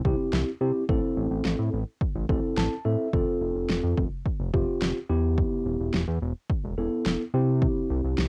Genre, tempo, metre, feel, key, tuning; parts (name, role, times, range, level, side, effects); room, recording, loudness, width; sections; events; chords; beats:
synth-pop; 107 BPM; 4/4; straight; A4 = 440 Hz
deep house drum kit; drums; 0.0-8.3 s; kick drum, snare drum; -30 LUFS; equal; overdrive, cassette tape
mellow tine electric piano; accompaniment; 0.1-8.2 s; B3 to A5; -30 LUFS; equal; cassette tape
chorused synth bass; bass; 0.1-8.3 s; E1 to C3; -30 LUFS; equal
moderate booth ambience, RT60 0.2 s; home recording on cassette; -27 LUFS; mono
0.0-8.3 A section
tine electric piano fill 2.3-3.1
0.0 C; 0.9 Am; 3.1 F; 5.1 Em; 7.3 C
0.33 | 0.89 1.45 2.01 2.57 | 3.13 3.69 4.26 4.82 | 5.38 5.94 6.50 7.06 | 7.62 8.18